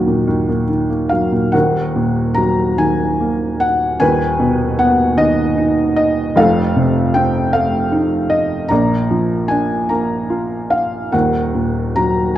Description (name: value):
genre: classical, lyrical solo piano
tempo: 50 BPM (dotted quarters)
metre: 6/8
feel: uneven beats, rubato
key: Eb harmonic minor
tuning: A4 = 439 Hz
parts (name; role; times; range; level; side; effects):
- felt-muted upright piano; solo; 0.0-12.4 s; Eb1 to Bb5; -14 LUFS; equal; none
room: moderate recital hall reverb, RT60 1.4 s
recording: dark, warm production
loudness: -14 LUFS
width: side -12 dB against mid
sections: 0.0-1.5 A section; 1.5-12.4 B section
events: none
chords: 0.0 Ebm; 4.0 Abm/Eb; 6.4 F7; 8.7 Bb; 11.1 Ebm